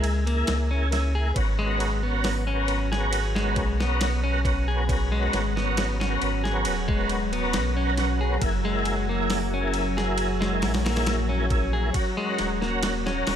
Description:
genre	trip hop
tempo	68 BPM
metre	4/4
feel	straight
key	G# minor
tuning	A4 = 440 Hz
part	tonewheel organ	accompaniment	0.0-13.4 s	A#3 to A#4	-28 LUFS	equal	chorus vibrato, slow rotary speaker, tremolo, vintage 12-bit sampler grit, tape echo
part	clean electric guitar	arpeggios	0.0-13.4 s	G#3 to G#4	-30 LUFS	left 3 dB	tape echo
part	warm sub bass	bass	0.0-13.4 s	D#1 to C#2	-27 LUFS	equal	none
part	dusty soul sampler-style drum kit	drums	0.0-13.4 s	hi-hat, kick drum, ride cymbal, snare drum	-30 LUFS	equal	small room ambience
part	string machine, cellos	sustained chords	1.4-13.4 s	F#3 to F#4	-32 LUFS	equal	ensemble chorus, vintage 12-bit sampler grit
room	light reverb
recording	none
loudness	-22 LUFS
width	side -9 dB against mid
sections	0.0-13.4 A section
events	none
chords	0.0 F#7 (rootless); 1.4 G#m11; 8.4 F#7; 11.9 D#m7

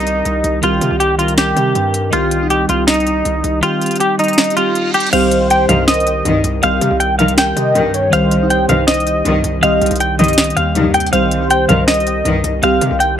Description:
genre	hip hop, trap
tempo	160 BPM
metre	4/4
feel	half-time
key	C minor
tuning	A4 = 439 Hz
part	semi-hollow electric guitar	melody	0.0-13.1 s	Eb4 to G5	-16 LUFS	equal	analog chorus, low-pass filter, ping-pong delay
part	glassy digital keys	accompaniment	0.0-13.2 s	Eb3 to Bb4	-18 LUFS	right 1 dB	chorus, low-pass filter
part	hard-hitting 808-style bass	bass	0.0-13.2 s	C2 to C3	-20 LUFS	equal	none
part	trap drum kit	drums	0.0-13.1 s	crash cymbal, hi-hat, snare drum	-18 LUFS	equal	none
part	reverse cymbal	sound effects	4.5-5.1 s	none	-25 LUFS	right 5 dB	none
part	warm velvety synth lead	second line	5.1-13.0 s	C5 to F5	-20 LUFS	left 1 dB	chorus, ping-pong delay
part	warm symphonic string section	stabs	5.7-12.5 s	C2 to Eb3	-18 LUFS	left 2 dB	ping-pong delay
room	light reverb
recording	none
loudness	-12 LUFS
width	side -9 dB against mid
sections	0.0-5.1 A section; 5.1-13.2 B section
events	kick muted 3.6-5.1; reverse cymbal 4.5-5.1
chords	0.0 Cm

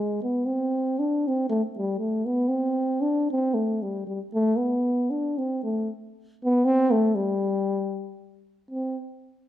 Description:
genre	alpine folk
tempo	116 BPM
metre	2/4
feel	swing 55% on 8ths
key	unclear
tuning	A4 = 440 Hz
part	dark euphonium	solo	0.0-9.0 s	G3 to D4	-23 LUFS	equal	none
room	moderate recital hall reverb, RT60 1.3 s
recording	minimal, uncompressed stereo recording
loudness	-23 LUFS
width	side -12 dB against mid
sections	0.4-8.7 A section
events	none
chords	none

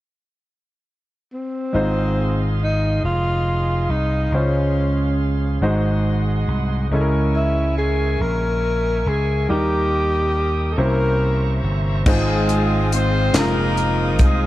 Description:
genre	slow gospel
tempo	46 BPM (dotted quarters)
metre	6/8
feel	straight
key	Ab major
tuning	A4 = 440 Hz
part	breathy tenor saxophone	melody	1.3-11.8 s	C4 to Bb4	-23 LUFS	equal	none
part	bright concert grand piano	accompaniment	1.7-14.5 s	Ab2 to Eb5	-24 LUFS	equal	none
part	bright tonewheel organ	sustained chords	1.7-14.5 s	C4 to Eb6	-30 LUFS	right 1 dB	slow rotary speaker
part	vintage slap bass	bass	1.7-14.5 s	F1 to Eb2	-20 LUFS	equal	none
part	clear horn section	melody	12.1-14.5 s	Ab3 to C5	-21 LUFS	left 1 dB	none
part	tight funk drum kit	drums	12.1-14.4 s	crash cymbal, hi-hat, kick drum, snare drum	-20 LUFS	equal	none
part	group handclap	percussion	13.3-13.7 s	none	-32 LUFS	right 4 dB	none
room	light reverb, studio ambience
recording	dark, warm production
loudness	-17 LUFS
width	side -15 dB against mid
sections	0.0-1.7 A section; 1.7-12.1 B section; 12.1-14.5 C section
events	none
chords	0.0 N.C.; 1.7 Ab6; 4.3 Dbmaj7; 5.6 Ab7; 6.9 Dbm6; 9.5 Eb; 10.8 C7b9; 12.1 Ab6

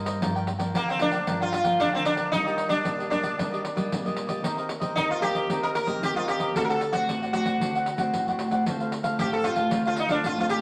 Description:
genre	samba and choro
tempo	114 BPM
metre	4/4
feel	straight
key	G minor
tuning	A4 = 440 Hz
part	cavaquinho	accompaniment	0.0-10.6 s	D4 to G5	-33 LUFS	equal	none
part	nylon-string guitar	accompaniment	0.0-10.6 s	G2 to G4	-33 LUFS	equal	none
part	pandeiro	percussion	0.1-10.6 s	none	-35 LUFS	equal	none
part	sitar	melody	0.8-10.6 s	Bb3 to Bb4	-28 LUFS	equal	none
room	wet studio reverb, RT60 0.6 s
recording	vinyl crackle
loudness	-26 LUFS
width	mono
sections	0.2-10.6 A section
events	none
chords	0.2 Gm7; 2.3 Ebmaj7; 4.4 Cm7/Eb; 6.5 D7; 8.7 Dm7

